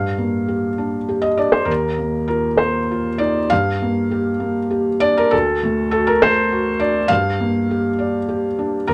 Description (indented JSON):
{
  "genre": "neoclassical minimalist piano",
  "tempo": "66 BPM (dotted quarters)",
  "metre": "6/8",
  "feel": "rubato",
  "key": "G minor",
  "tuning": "A4 = 441 Hz",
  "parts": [
    { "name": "felt-muted upright piano", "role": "solo", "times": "0.0-8.9 s", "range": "D2 to F5", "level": "-19 LUFS", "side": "equal", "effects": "none" }
  ],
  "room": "moderate studio ambience, RT60 0.5 s",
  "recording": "none",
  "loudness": "-19 LUFS",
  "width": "mono",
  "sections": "0.0-8.9 A section",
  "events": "none",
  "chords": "0.0 Gm7; 1.7 Ebsus2; 3.5 Gm7; 5.3 D; 7.1 Gm7"
}